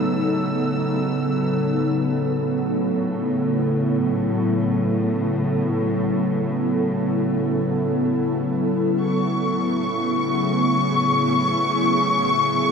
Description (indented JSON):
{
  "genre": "ambient",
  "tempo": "free time",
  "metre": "none",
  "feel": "none",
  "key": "A lydian",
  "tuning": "A4 = 445 Hz",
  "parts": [
    { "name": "ethereal airy pad", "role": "sustained chords", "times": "0.0-12.7 s", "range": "C#3 to A4", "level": "-20 LUFS", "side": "equal", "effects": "ensemble chorus, built-in reverb" },
    { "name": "rich symphonic cello section", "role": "bass", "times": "0.0-12.7 s", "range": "A2", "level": "-29 LUFS", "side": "equal", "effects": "none" },
    { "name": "muted studio violin section", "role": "texture", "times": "0.0-1.9, 9.0-12.7 s", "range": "C#6 to E6", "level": "-23 LUFS", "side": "left 2 dB", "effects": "none" }
  ],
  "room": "wet huge ambient reverb, RT60 8.1 s",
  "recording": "none",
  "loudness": "-19 LUFS",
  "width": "side -6 dB against mid",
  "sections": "0.0-1.8 A section; 1.8-12.7 B section",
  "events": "fade-out on cello section 1.8-12.7",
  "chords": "0.0 A; 1.8 Aadd9; 9.0 C#m/A",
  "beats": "free time"
}